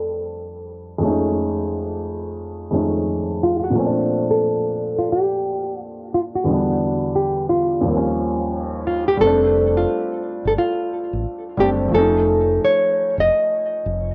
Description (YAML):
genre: lo-fi hip hop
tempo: 88 BPM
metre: 4/4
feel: swing 64% on 16ths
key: F major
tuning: A4 = 440 Hz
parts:
  - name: nylon-string guitar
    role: melody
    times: 0.0-14.1 s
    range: F4 to Eb5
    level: -22 LUFS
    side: equal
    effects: low-pass filter, cassette tape, plate reverb
  - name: felt-muted upright piano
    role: accompaniment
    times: 0.0-14.1 s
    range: Eb2 to Eb4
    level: -25 LUFS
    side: equal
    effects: cassette tape, low-pass filter
  - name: deep dub fingered electric bass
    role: bass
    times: 9.2-14.1 s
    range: F1 to A1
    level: -26 LUFS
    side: equal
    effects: none
room: moderate booth ambience, RT60 0.3 s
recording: home recording on cassette, low-pass filter, lossy compression artefacts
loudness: -20 LUFS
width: mono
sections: 0.0-9.2 A section; 9.2-14.1 B section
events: filter sweep 0.0-9.2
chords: 0.0 F6; 1.0 F7alt; 3.7 Bbmaj9; 6.5 Em7; 7.8 Eb9; 9.2 F6; 11.9 Faug7